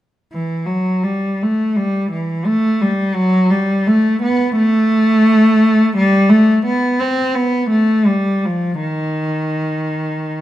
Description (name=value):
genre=classical, baroque-style suite movement for unaccompanied cello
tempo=85 BPM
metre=4/4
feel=uneven beats, rubato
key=unclear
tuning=A4 = 440 Hz
part: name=rich cello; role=solo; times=0.3-10.4 s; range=D#3 to C4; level=-13 LUFS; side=equal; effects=none
room=wet stone room reverb, RT60 1.1 s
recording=dark, warm production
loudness=-13 LUFS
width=side -14 dB against mid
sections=0.3-10.4 A section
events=none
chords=none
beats=| 0.31 1.05 1.76 2.48 | 3.17 3.87 4.57 5.27 | 5.96 6.66 7.36 8.08 | 8.82 9.57 10.32